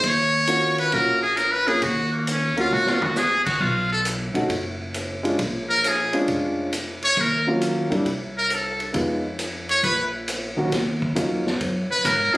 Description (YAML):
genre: jazz, small-group swing and bop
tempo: 135 BPM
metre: 4/4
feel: swing 68% on 8ths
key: Eb minor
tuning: A4 = 438 Hz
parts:
  - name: trumpet with metal mute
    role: melody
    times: 0.0-12.4 s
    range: Bb3 to Db5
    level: -20 LUFS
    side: equal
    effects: none
  - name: upright bass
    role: bass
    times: 0.0-12.4 s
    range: F1 to Ab2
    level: -29 LUFS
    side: equal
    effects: none
  - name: vintage drum kit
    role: drums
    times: 0.0-12.4 s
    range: crash cymbal, hi-hat, kick drum, ride cymbal, snare drum, toms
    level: -28 LUFS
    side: equal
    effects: none
  - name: warm upright piano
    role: accompaniment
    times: 0.5-12.4 s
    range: D#2 to Ab4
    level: -24 LUFS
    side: equal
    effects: none
room: light reverb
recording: recorded on a phone in the room, studio reverb, compression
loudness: -20 LUFS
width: side -19 dB against mid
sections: 0.0-10.7 A section; 10.7-12.4 B section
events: drum fill 2.7-3.2; muted trumpet solo 10.7-12.4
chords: 0.0 Ebm9; 3.6 B5; 5.4 Bb7#9; 7.2 Ebm9; 8.1 Am/C; 8.9 Fm7b5; 9.8 Bmaj9/A#; 10.7 Ebm9